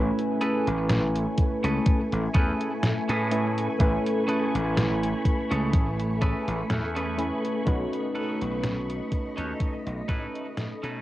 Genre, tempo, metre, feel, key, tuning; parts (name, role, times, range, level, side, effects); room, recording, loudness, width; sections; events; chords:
vaporwave; 62 BPM; 4/4; swing 54% on 16ths; A lydian; A4 = 439 Hz
warbly lo-fi synth keys; accompaniment; 0.0-11.0 s; A3 to G#5; -29 LUFS; equal; wide subtle chorus, vintage 12-bit sampler grit, cassette tape, tape echo
soft string machine; sustained chords; 0.0-11.0 s; A3 to C#6; -32 LUFS; left 1 dB; phaser, ensemble chorus, cassette tape
gritty slap bass; bass; 0.0-11.0 s; A1 to B2; -29 LUFS; equal; overdrive
detuned 8-bit digital drum machine; drums; 0.2-11.0 s; hi-hat, snare drum; -28 LUFS; equal; small room ambience, cassette tape
clean electric guitar; riff; 0.4-11.0 s; C#4 to C#5; -32 LUFS; right 1 dB; wide subtle chorus, cassette tape, tape echo
electronic kick drum; drums; 1.4-10.3 s; -24 LUFS; equal; small room ambience, cassette tape
light reverb; home recording on cassette; -24 LUFS; side -15 dB against mid
0.0-11.0 A section
fade-out 5.1-11.0
0.0 Amaj9; 7.7 B9